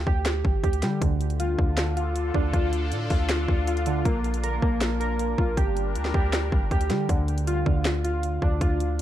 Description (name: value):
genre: hip hop, trap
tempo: 158 BPM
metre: 4/4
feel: half-time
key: D minor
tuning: A4 = 441 Hz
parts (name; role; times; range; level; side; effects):
- warbly lo-fi synth keys; arpeggios; 0.0-9.0 s; D3 to Bb4; -28 LUFS; right 1 dB; chorus, digital delay
- hard-hitting 808-style bass; bass; 0.0-9.0 s; G1 to D3; -27 LUFS; equal; none
- trap drum kit; drums; 0.1-9.0 s; handclaps, hi-hat, kick drum, snare drum; -26 LUFS; equal; overdrive
- sweeping resonant pad; sustained chords; 1.0-7.1 s; D3 to Bb4; -34 LUFS; left 1 dB; chorus
room: little or no reverb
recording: none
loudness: -22 LUFS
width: side -12 dB against mid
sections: 0.0-7.1 A section; 7.1-9.0 A section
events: none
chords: 0.0 G5; 1.0 Dm; 4.1 Bb; 5.6 Gm7; 7.1 Dm